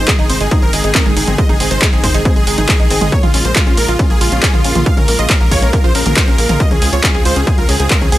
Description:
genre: uplifting trance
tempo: 138 BPM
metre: 4/4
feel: straight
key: Bb minor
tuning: A4 = 440 Hz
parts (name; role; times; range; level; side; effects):
- supersaw chords; melody; 0.0-8.2 s; F4 to F5; -19 LUFS; equal; sidechain pumping
- lush unison pad; sustained chords; 0.0-8.2 s; C3 to F4; -22 LUFS; left 1 dB; chorus, sidechain pumping
- tight sequenced synth; arpeggios; 0.0-8.2 s; Ab3 to Ab4; -22 LUFS; right 2 dB; chorus, phaser, sidechain pumping, tape echo
- tight sequencer bass; bass; 0.0-8.2 s; Ab1 to Db2; -18 LUFS; equal; sidechain pumping
- electronic kick drum; drums; 0.1-8.0 s; none; -13 LUFS; equal; overdrive
- punchy analog drum machine; drums; 0.1-8.2 s; handclaps, hi-hat, toms; -17 LUFS; equal; sidechain pumping on hats, sidechain pumping on toms, sidechain pumping on cymbals
room: little or no reverb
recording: none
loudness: -10 LUFS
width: side -15 dB against mid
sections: 0.0-8.2 A section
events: none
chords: 0.0 Ab; 3.1 Bbm7; 6.6 Dbmaj7

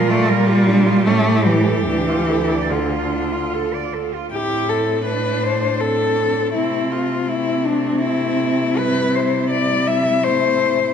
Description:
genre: classical, lyrical piece for cello ensemble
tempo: 72-84 BPM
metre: 3/4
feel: rubato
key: D minor, A minor from 4.3 s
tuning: A4 = 441 Hz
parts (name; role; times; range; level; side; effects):
- warm cello; melody; 0.0-10.9 s; D4 to E5; -20 LUFS; left 5 dB; none
- rich cello; second line; 0.0-10.9 s; C4 to D5; -25 LUFS; right 8 dB; none
- rich cello; accompaniment; 0.0-10.9 s; D3 to D4; -21 LUFS; equal; none
- rich cello; bass; 0.0-10.9 s; D2 to C3; -22 LUFS; right 1 dB; none
room: wet recital hall reverb, RT60 1.6 s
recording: nothing above 10.7 kHz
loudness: -16 LUFS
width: side -7 dB against mid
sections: 0.0-4.3 A section; 4.3-10.9 B section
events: none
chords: 0.0 Bb; 1.1 A7; 1.9 Dm; 4.3 Am; 6.5 Am/C; 8.8 C

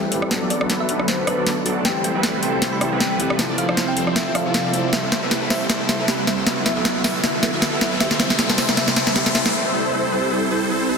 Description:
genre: future bass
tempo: 156 BPM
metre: 4/4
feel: swing 55% on 16ths, half-time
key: A minor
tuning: A4 = 441 Hz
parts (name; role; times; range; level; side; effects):
- thumb-piano-like synth pluck; melody; 0.0-9.5 s; B4 to B5; -27 LUFS; left 1 dB; chorus, phaser, digital delay
- dark grand piano; accompaniment; 0.0-5.0 s; E3 to A4; -27 LUFS; left 1 dB; digital delay
- ethereal airy pad; sustained chords; 0.0-9.5 s; C3 to G4; -30 LUFS; right 2 dB; ensemble chorus, built-in reverb
- supersaw chords; riff; 0.0-11.0 s; F3 to D5; -23 LUFS; right 1 dB; phaser, low-pass filter, digital delay
- wide detuned saw bass; bass; 0.0-9.5 s; F1 to B1; -30 LUFS; equal; chorus, high-pass filter
- trap drum kit; drums; 0.1-9.5 s; hi-hat, rim click, snare drum; -21 LUFS; equal; overdrive
- wide unison pluck; arpeggios; 4.9-9.5 s; F#4 to E5; -33 LUFS; left 2 dB; none
- riser; sound effects; 6.7-9.5 s; none; -28 LUFS; left 4 dB; none
room: wet lush hall reverb, RT60 2.0 s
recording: dense, heavily limited modern master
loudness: -17 LUFS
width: side -5 dB against mid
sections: 0.0-11.0 A section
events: build-up 0.0-11.0; drum fill 0.0-9.5; riser 6.7-9.5; break 9.5-11.0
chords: 0.3 Bm7; 1.9 Am7; 3.4 Fmaj7; 4.9 Am7; 6.5 Bm7; 8.0 Am7; 9.5 Am7/G

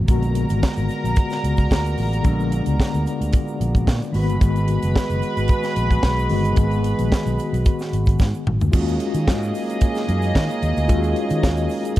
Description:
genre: disco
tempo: 111 BPM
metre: 4/4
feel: straight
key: Eb minor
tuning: A4 = 440 Hz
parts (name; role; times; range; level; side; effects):
- mellow tine electric piano; accompaniment; 0.0-12.0 s; Db3 to Gb4; -25 LUFS; left 3 dB; medium stereo tremolo
- fingered electric bass; bass; 0.0-12.0 s; Gb1 to Eb3; -22 LUFS; equal; none
- rich studio string section; second line; 0.1-12.0 s; Bb3 to Cb6; -28 LUFS; right 2 dB; none
- warm French horn section; sustained chords; 0.1-12.0 s; Bb2 to F5; -30 LUFS; right 1 dB; none
- tight funk drum kit; drums; 0.1-12.0 s; crash cymbal, hi-hat, kick drum, snare drum, toms; -19 LUFS; equal; none
- tube shaker; percussion; 0.1-12.0 s; none; -49 LUFS; right 14 dB; none
room: studio reverb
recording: dark, warm production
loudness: -18 LUFS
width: side -15 dB against mid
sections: 0.1-8.7 A section; 8.7-12.0 B section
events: drum fill 8.2-8.7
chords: 0.1 Bb7b9b13; 4.1 Abm7; 8.7 Ebm11

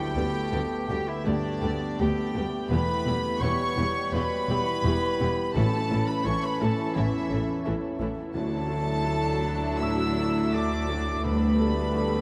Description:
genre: cinematic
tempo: 84 BPM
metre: 4/4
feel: rubato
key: D major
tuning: A4 = 441 Hz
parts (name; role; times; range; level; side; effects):
- warm symphonic violin section; melody; 0.0-12.2 s; D5 to E6; -38 LUFS; equal; none
- clear clarinet; second line; 0.0-12.2 s; D4 to E5; -36 LUFS; equal; none
- hollow concert flute; second line; 0.0-12.2 s; D5 to E6; -37 LUFS; equal; none
- felt-muted upright piano; accompaniment; 0.0-12.2 s; D2 to A4; -36 LUFS; equal; none
- dark French horn section; sustained chords; 0.0-12.2 s; E3 to A4; -36 LUFS; equal; none
- concert harp; arpeggios; 0.0-12.2 s; A2 to B4; -39 LUFS; equal; none
- warm chamber violin section; second line; 0.2-12.2 s; B3 to A4; -40 LUFS; equal; none
- dark symphonic viola section; accompaniment; 0.2-12.2 s; E3 to A3; -37 LUFS; equal; none
- warm studio double bass section; bass; 0.2-12.2 s; E1 to D2; -34 LUFS; equal; none
- warm symphonic cello section; bass; 0.2-12.2 s; D2 to A2; -34 LUFS; equal; none
- timpani; percussion; 5.6-12.2 s; A2 to D3; -40 LUFS; equal; none
room: wet cathedral reverb, RT60 6.5 s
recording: in a vast, echoing space, vinyl crackle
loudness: -27 LUFS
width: mono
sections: 0.0-12.2 A section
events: none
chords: 0.0 Gadd9/D; 2.7 Em; 5.5 A; 8.4 Dadd9; 11.3 Gadd9/D

